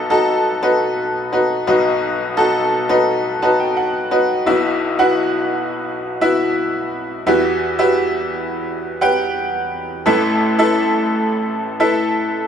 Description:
pop; 86 BPM; 4/4; straight; A4 = 440 Hz
bright upright piano; solo; 0.0-12.5 s; A1 to A5; -15 LUFS; equal
wet small room reverb, RT60 0.5 s; band playing live in one room; -15 LUFS; side -8 dB against mid
0.0-4.5 A section; 4.5-12.5 B section
upright piano fill 3.1-4.5
0.0 B; 4.5 Bsus4; 7.3 Emadd9; 10.1 Asus2

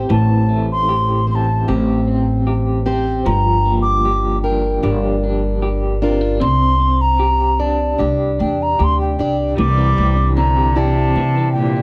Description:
acoustic folk duo or small band; 76 BPM; 4/4; straight; A4 = 439 Hz
fingerpicked plugged-in steel-string acoustic guitar; accompaniment; 0.0-11.8 s; G2 to D5; -23 LUFS; equal
electric guitar through a small old amp; arpeggios; 0.0-11.8 s; E3 to G4; -26 LUFS; equal; tremolo
upright bass; bass; 0.0-11.8 s; G1 to C3; -20 LUFS; equal
wooden flute; melody; 0.1-11.8 s; G5 to D6; -21 LUFS; equal
warm cello; second line; 9.6-11.8 s; Bb2 to G3; -23 LUFS; equal
light reverb; -17 LUFS; mono
0.0-9.6 A section; 9.6-11.8 B section
flute solo 0.0-9.6
0.0 Am7; 3.3 Gm7; 6.4 Cadd9

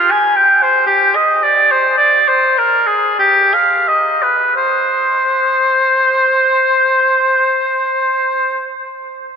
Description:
classical, baroque-style fantasia for unaccompanied oboe; 42-59 BPM; 3/4; rubato; C minor; A4 = 439 Hz
clear oboe; solo; 0.0-8.7 s; F4 to Ab5; -11 LUFS; equal
wet cathedral reverb, RT60 6.1 s; in a vast, echoing space; -11 LUFS; side -7 dB against mid
0.0-4.6 A section; 4.6-8.7 B section
slowing down 0.0-4.6

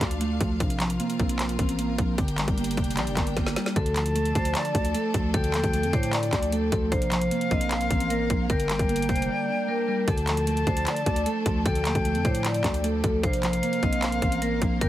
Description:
hip hop, trap; 152 BPM; 4/4; half-time; D minor; A4 = 441 Hz
mellow electric guitar; accompaniment; 0.0-14.9 s; C3 to D5; -29 LUFS; right 1 dB; low-pass filter
rich symphonic string section; sustained chords; 0.0-14.9 s; F3 to G5; -37 LUFS; left 2 dB
growling 808-style bass; bass; 0.0-14.9 s; F1 to A2; -29 LUFS; equal
trap drum kit; drums; 0.0-14.9 s; handclaps, hi-hat, kick drum, snare drum; -27 LUFS; equal
vibraphone with hard mallets; melody; 3.8-14.9 s; A4 to F5; -30 LUFS; left 1 dB; low-pass filter, digital delay
jazz flute; second line; 3.8-14.9 s; F5 to A5; -32 LUFS; left 2 dB; digital delay
small room ambience; heavily compressed radio sound; -23 LUFS; side -13 dB against mid
0.0-3.8 A section; 3.8-14.9 B section
drum fill 3.4-3.8; drums muted 9.3-10.1
0.0 Dm; 0.6 Bbsus2; 2.2 Gm; 3.8 Dm; 6.9 Bbsus2; 8.5 Gm; 10.1 Dm; 13.2 Bbsus2

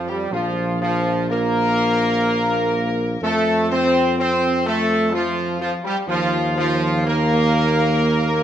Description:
classical; 62 BPM; 3/4; straight; F major; A4 = 440 Hz
bright trombone section; sustained chords; 0.0-8.4 s; F3 to C4; -21 LUFS; right 2 dB
mellow tuba; bass; 0.0-8.4 s; Bb1 to F2; -23 LUFS; right 2 dB
mellow trumpet section; melody; 0.1-8.4 s; F4 to C5; -24 LUFS; left 1 dB
mellow French horn section; sustained chords; 0.1-8.4 s; F3 to C4; -25 LUFS; left 4 dB
wet recital hall reverb, RT60 1.4 s; -17 LUFS; side -10 dB against mid
0.0-8.4 A section
0.3 Bb5; 3.2 F; 6.1 Eb5

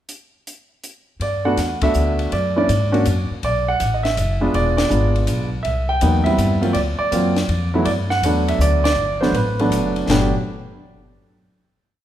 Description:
jazz piano trio; 162 BPM; 3/4; swing 66% on 8ths; G major; A4 = 437 Hz
compact cocktail drum kit; drums; 0.1-10.2 s; hi-hat, kick drum, ride cymbal, snare drum, toms; -27 LUFS; left 3 dB
warm concert grand piano; melody; 1.2-10.3 s; F#3 to G5; -19 LUFS; right 2 dB
upright bass; bass; 1.2-10.3 s; E1 to Ab2; -21 LUFS; left 1 dB
moderate recital hall reverb, RT60 1.4 s; recorded in a church or concert hall; -16 LUFS; side -11 dB against mid
0.1-1.2 pickup bar; 1.2-10.1 A section; 10.1-11.2 final chord
band accent 1.8, 4.7, 8.8
0.1 N.C.; 1.2 Gmaj7; 2.3 F#(b13); 3.4 Bm7; 4.5 E7b9; 5.6 Cmaj7#11; 6.8 D(#9); 7.9 Gmaj7; 10.1 N.C.

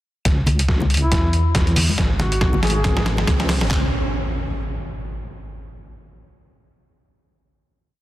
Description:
deep dubstep; 139 BPM; 4/4; swing 57% on 16ths, half-time; C# minor; A4 = 444 Hz
deep soft wobble bass; bass; 0.3-3.9 s; G#1 to E2; -20 LUFS; equal; chorus
trip hop sampler-style drum kit; drums; 0.3-3.8 s; handclaps, kick drum; -22 LUFS; equal; overdrive
trip hop sampler-style drum kit; drums; 0.3-3.7 s; hi-hat, snare drum; -24 LUFS; equal; overdrive
riser and impact; sound effects; 1.9-5.4 s; -28 LUFS; right 1 dB
congas; percussion; 0.5-3.2 s; -26 LUFS; left 2 dB
warm duduk; melody; 1.0-3.1 s; E4 to G#4; -28 LUFS; left 1 dB; dub echo
light reverb; dense, heavily limited modern master; -17 LUFS; side -15 dB against mid
0.3-3.7 build; 3.7-5.4 final note
build-up 0.3-3.7; drum fill 0.3-3.7; riser 1.9-3.7
0.3 C#5; 3.7 N.C.

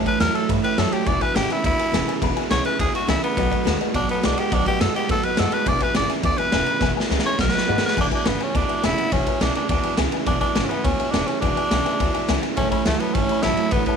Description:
rockabilly; 209 BPM; 4/4; straight; E mixolydian; A4 = 437 Hz
picked steel-string acoustic guitar; accompaniment; 0.0-14.0 s; E2 to F#4; -30 LUFS; left 14 dB
electric guitar through a small old amp; riff; 0.0-14.0 s; E2 to G#3; -26 LUFS; right 15 dB; spring reverb
raspy tenor saxophone; melody; 0.1-14.0 s; A3 to D5; -24 LUFS; equal
clear upright piano; accompaniment; 0.1-14.0 s; B4 to B5; -30 LUFS; left 13 dB
upright bass; bass; 0.1-13.9 s; E1 to A2; -27 LUFS; left 1 dB
raw garage drum kit; drums; 0.1-13.9 s; crash cymbal, kick drum, ride cymbal, snare drum; -24 LUFS; left 1 dB
studio reverb; 1960s-style stereo with parts hard left and right; -18 LUFS; side -6 dB against mid
0.0-8.0 A section; 8.0-14.0 B section
tenor saxophone solo 0.0-8.0; drum fill 6.8-8.0
0.0 A7; 1.1 E7; 3.4 B7; 5.7 E7; 7.4 B7; 8.0 E7; 12.6 A7

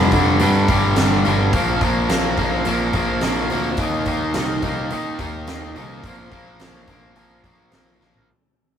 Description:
hard rock; 107 BPM; 4/4; straight; A4 = 440 Hz
distorted electric guitar; riff; 0.0-8.3 s; G2 to Eb4; -24 LUFS; right 3 dB; distortion
overdriven semi-hollow guitar; riff; 0.0-8.3 s; G2 to Eb4; -22 LUFS; left 2 dB
modern bright picked electric bass; bass; 0.0-8.3 s; F1 to Eb3; -24 LUFS; equal
huge arena drum kit; drums; 0.1-8.3 s; hi-hat, kick drum, snare drum, toms; -23 LUFS; right 1 dB
moderate booth ambience, RT60 0.2 s; rough rehearsal-room recording, tube saturation; -17 LUFS; side -8 dB against mid
0.0-8.3 A section
fade-out 0.0-8.3; drum fill 8.0
0.0 G5; 1.5 Bb; 3.8 Eb5; 6.0 Bb5

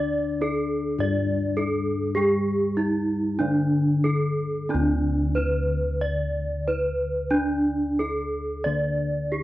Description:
Javanese gamelan; 91-107 BPM; 4/4; straight; D pelog barang; A4 = 440 Hz
gamelan-type bronze metallophone; melody; 0.0-9.4 s; D4 to D5; -25 LUFS; right 1 dB
gamelan-type bronze metallophone; accompaniment; 0.0-4.7 s; D3 to D4; -27 LUFS; left 3 dB
gamelan-type bossed gongs; bass; 0.0-9.4 s; D2 to D5; -27 LUFS; left 1 dB
light reverb; dry, close 1970s-style studio recording; -22 LUFS; side -15 dB against mid
0.0-4.7 A section; 4.7-9.4 B section

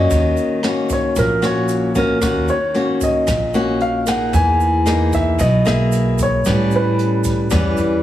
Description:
bossa nova; 113 BPM; 4/4; straight; Eb minor; A4 = 440 Hz
warm grand piano; melody; 0.0-7.8 s; Bb4 to G#5; -20 LUFS; equal
nylon-string guitar; accompaniment; 0.0-8.0 s; A2 to Ab4; -18 LUFS; left 1 dB
upright bass; bass; 0.0-8.0 s; A1 to E2; -19 LUFS; right 1 dB
jazz brush drum kit; drums; 0.1-7.9 s; hi-hat, kick drum, rim click; -26 LUFS; right 1 dB
egg shaker; percussion; 0.1-8.0 s; -34 LUFS; right 8 dB
light reverb; heavily compressed radio sound, small room ambience; -14 LUFS; side -12 dB against mid
0.0-4.3 A section; 4.3-8.0 B section
0.1 Ebm7; 4.3 Emaj7#11; 6.5 A9

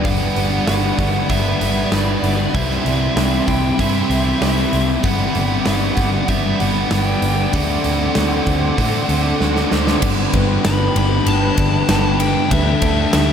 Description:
rock, shoegaze and dream pop; 96 BPM; 4/4; straight; G major; A4 = 439 Hz
fuzz lead guitar; melody; 0.0-13.3 s; D5 to B5; -24 LUFS; left 1 dB; distortion, tape echo
hollow soft pad; sustained chords; 0.0-13.3 s; D4 to D6; -25 LUFS; right 1 dB; chorus
direct-recorded clean electric guitar; arpeggios; 0.0-13.3 s; E3 to G4; -29 LUFS; right 7 dB
biting overdriven guitar; riff; 0.0-10.0 s; C3 to C5; -23 LUFS; right 5 dB; reverse reverb
thick fuzz guitar; riff; 0.0-13.3 s; G2 to D4; -22 LUFS; left 7 dB; distortion, wide subtle chorus
vintage muted picked electric bass; bass; 0.0-13.3 s; G1 to A2; -21 LUFS; equal
huge arena drum kit; drums; 0.0-13.3 s; crash cymbal, hi-hat, kick drum, ride cymbal, snare drum; -21 LUFS; equal
wet huge ambient reverb, RT60 7.2 s; dreamy mix soaked in reverb; -15 LUFS; side -8 dB against mid
0.0-10.0 A section; 10.0-13.3 B section
drum fill 9.4-10.0
0.0 Gmaj7; 2.5 Cmaj7; 5.0 Gmaj7; 7.5 D7; 10.0 G; 12.5 Dsus4

